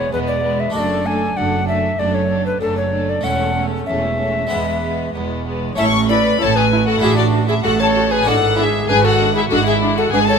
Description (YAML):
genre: classical, baroque-style concerto movement with solo episodes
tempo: 96 BPM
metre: 4/4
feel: straight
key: A major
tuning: A4 = 441 Hz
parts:
  - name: mellow alto recorder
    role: melody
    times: 0.0-10.4 s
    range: F#4 to G#5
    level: -20 LUFS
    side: left 2 dB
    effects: none
  - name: rich chamber violin section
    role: melody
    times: 0.0-10.4 s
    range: A4 to C#6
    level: -23 LUFS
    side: left 5 dB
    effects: none
  - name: rich chamber violin section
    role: second line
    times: 0.0-10.4 s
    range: B3 to C#5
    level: -22 LUFS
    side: left 3 dB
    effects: none
  - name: dark chamber viola section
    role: accompaniment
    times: 0.0-10.2 s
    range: G#3 to F#4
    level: -26 LUFS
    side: right 1 dB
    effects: none
  - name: harpsichord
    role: accompaniment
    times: 0.0-10.4 s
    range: E2 to B4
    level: -26 LUFS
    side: right 1 dB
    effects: none
  - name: rich chamber double bass section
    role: bass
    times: 0.0-10.4 s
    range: E1 to A1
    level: -23 LUFS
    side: right 5 dB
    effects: none
  - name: warm chamber cello section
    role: bass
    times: 0.0-10.4 s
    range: E2 to A2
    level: -23 LUFS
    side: right 5 dB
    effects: none
room: light reverb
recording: none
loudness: -15 LUFS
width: side -6 dB against mid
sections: 0.0-5.8 A section; 5.8-10.4 B section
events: none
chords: 0.0 E; 0.7 D/F#; 3.2 A/E; 4.5 E; 5.8 A; 7.0 D/A; 8.3 E7/G#